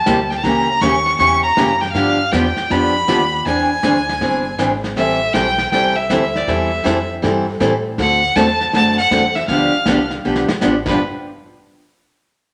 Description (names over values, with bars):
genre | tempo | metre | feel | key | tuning
country, western swing | 159 BPM | 4/4 | swing 66% on 8ths | G mixolydian | A4 = 439 Hz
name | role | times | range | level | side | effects
clear fiddle | melody | 0.0-11.0 s | B4 to C#6 | -19 LUFS | equal | none
upright bass | bass | 0.0-11.0 s | G1 to A2 | -29 LUFS | equal | none
picked acoustic archtop guitar | accompaniment | 0.1-11.0 s | G2 to A4 | -20 LUFS | equal | none
vintage brush drum kit | drums | 0.1-10.9 s | brushed snare drum, crash cymbal, hi-hat, kick drum, snare drum | -27 LUFS | equal | none
room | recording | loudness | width
wet large studio reverb, RT60 1.2 s | none | -16 LUFS | mono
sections
0.0-11.0 A section; 11.0-12.5 B section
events
drum fill 10.2-10.6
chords
0.4 C#dim7; 1.9 G7; 3.5 E7alt; 5.0 Am7; 8.0 D7; 9.5 G7; 11.0 N.C.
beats
0.06 | 0.44 0.82 1.19 1.57 | 1.95 2.33 2.70 3.08 | 3.46 3.83 4.21 4.59 | 4.96 5.34 5.72 6.09 | 6.47 6.85 7.22 7.60 | 7.98 8.36 8.73 9.11 | 9.49 9.86 10.24 10.62